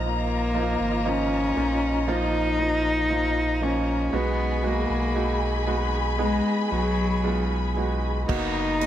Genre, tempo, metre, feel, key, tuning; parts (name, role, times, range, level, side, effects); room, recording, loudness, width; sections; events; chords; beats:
pop ballad; 58 BPM; 4/4; straight; A4 = 440 Hz
clear concert grand piano; accompaniment; 0.0-8.9 s; A#2 to G#4; -29 LUFS; right 4 dB
warm studio string section; sustained chords; 0.0-8.9 s; E#4 to B5; -30 LUFS; left 2 dB
saturated sub bass; bass; 0.0-8.9 s; F#1 to B1; -28 LUFS; equal
warm cello; melody; 0.1-8.9 s; F#3 to D#4; -26 LUFS; left 2 dB
natural country drum kit; drums; 8.3-8.9 s; crash cymbal, hi-hat, kick drum; -29 LUFS; right 1 dB
studio reverb; -22 LUFS; side -11 dB against mid
0.0-8.3 A section
0.0 D#sus2; 4.1 G#m7/B; 8.3 Bmaj7/F#
| 0.03 1.05 2.08 3.10 | 4.13 5.15 6.19 7.24 | 8.29